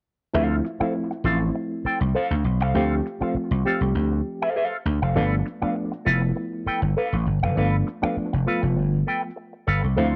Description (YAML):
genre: funk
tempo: 100 BPM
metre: 4/4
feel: straight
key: unclear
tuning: A4 = 440 Hz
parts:
  - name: electric guitar with an envelope filter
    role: accompaniment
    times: 0.3-10.2 s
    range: A4 to G5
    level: -28 LUFS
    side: equal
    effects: wah, plate reverb
  - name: reed electric piano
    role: stabs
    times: 0.3-10.2 s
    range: F3 to G4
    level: -29 LUFS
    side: equal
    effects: fast tremolo, analog delay
  - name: vintage slap bass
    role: bass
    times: 0.3-10.2 s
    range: F1 to D2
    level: -24 LUFS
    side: equal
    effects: none
room: light reverb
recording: cassette tape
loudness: -24 LUFS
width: mono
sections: 0.3-10.2 A section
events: none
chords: 0.3 G9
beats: | 0.35 0.95 1.55 2.15 | 2.75 3.35 3.96 4.56 | 5.16 5.76 6.36 6.96 | 7.56 8.16 8.77 9.37 | 9.97